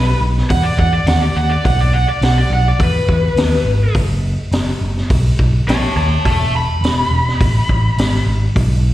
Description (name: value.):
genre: blues rock power trio and southern rock.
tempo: 104 BPM.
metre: 4/4.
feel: straight.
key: unclear.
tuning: A4 = 440 Hz.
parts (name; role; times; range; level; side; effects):
overdriven slide guitar; melody; 0.0-8.2 s; B4 to B5; -19 LUFS; equal; slapback echo.
picked electric bass; bass; 0.0-8.9 s; E1 to E2; -15 LUFS; equal; none.
vintage drum kit; drums; 0.4-8.7 s; hi-hat, kick drum, snare drum; -19 LUFS; equal; none.
room: studio reverb.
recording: live gig heard through the venue's PA, recital hall reverb.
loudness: -13 LUFS.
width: side -14 dB against mid.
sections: 0.0-8.9 A section.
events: electric slide guitar solo 0.0-8.9.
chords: 0.0 B; 4.0 F#5; 6.3 E.